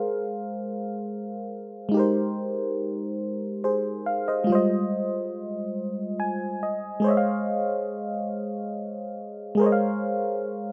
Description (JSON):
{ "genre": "R&B", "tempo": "47 BPM (dotted quarters)", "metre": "6/8", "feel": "straight", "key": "Ab major", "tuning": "A4 = 441 Hz", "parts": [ { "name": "mellow FM electric piano", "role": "solo", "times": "0.0-10.7 s", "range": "G3 to Ab5", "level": "-27 LUFS", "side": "equal", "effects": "chorus, slapback echo" } ], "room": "little or no reverb", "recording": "recorded outdoors, with no room sound, nothing above 10.4 kHz", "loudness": "-27 LUFS", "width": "mono", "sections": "0.0-1.9 A section; 1.9-10.7 A section", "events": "FM electric piano fill 5.8-7.0", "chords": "0.0 Ab69; 1.9 Abmaj9; 4.5 Fm9; 7.0 Dbmaj9/Ab; 9.6 Ab69", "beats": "0.66 | 1.93 3.21 | 4.49 5.76 | 7.04 8.31 | 9.59" }